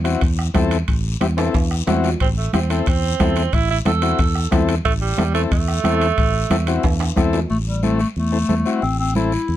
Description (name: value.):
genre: latin, cumbia.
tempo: 181 BPM.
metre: 4/4.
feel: straight.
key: A dorian.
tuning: A4 = 440 Hz.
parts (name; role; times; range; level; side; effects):
overdriven combo organ; accompaniment; 0.0-9.3 s; C4 to A4; -22 LUFS; left 6 dB; none.
fingered electric bass; bass; 0.0-9.6 s; A1 to E2; -21 LUFS; equal; none.
guiro; percussion; 0.1-9.6 s; none; -34 LUFS; left 8 dB; none.
timbales; percussion; 0.1-7.4 s; none; -29 LUFS; right 5 dB; none.
bombo; percussion; 0.2-7.3 s; none; -22 LUFS; equal; none.
congas; percussion; 0.2-9.6 s; none; -25 LUFS; right 2 dB; none.
clear tenor saxophone; second line; 2.2-7.1 s; G3 to A4; -23 LUFS; right 8 dB; none.
clear clarinet; melody; 7.5-9.6 s; G3 to E4; -21 LUFS; left 3 dB; none.
room: little or no reverb.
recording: close, detailed microphones.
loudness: -16 LUFS.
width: side -12 dB against mid.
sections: 0.0-7.5 A section; 7.5-9.6 B section.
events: tenor saxophone solo 0.0-7.5; drum fill 1.4-2.2, 6.8-7.5.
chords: 0.0 Am.